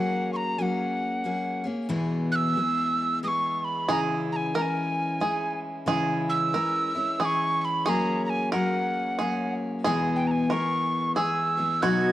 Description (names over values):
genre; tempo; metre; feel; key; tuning
acoustic folk duo or small band; 91 BPM; 3/4; swing 62% on 8ths; F# mixolydian; A4 = 440 Hz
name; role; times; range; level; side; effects
breathy mellow tin whistle; melody; 0.0-12.1 s; F#5 to G#6; -27 LUFS; right 1 dB; cassette tape
picked steel-string acoustic guitar; accompaniment; 0.0-12.1 s; E2 to G#4; -28 LUFS; left 2 dB; cassette tape
bluegrass banjo; arpeggios; 3.9-12.1 s; F#4 to A#4; -30 LUFS; right 2 dB; cassette tape
accordion; sustained chords; 11.8-12.1 s; B2 to D#5; -32 LUFS; right 1 dB; stereo widening, cassette tape
room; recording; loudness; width
moderate spring reverb, RT60 2.6 s; home recording on cassette; -24 LUFS; side -14 dB against mid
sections
0.0-11.8 A section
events
tin whistle solo 0.0-11.8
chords
0.0 F#add9; 1.9 E; 3.9 C#m; 7.9 F#add9; 9.8 E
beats
0.59 1.25 | 1.91 2.57 3.23 | 3.90 4.56 5.22 | 5.88 6.54 7.20 | 7.86 8.52 9.18 | 9.84 10.50 11.16 | 11.82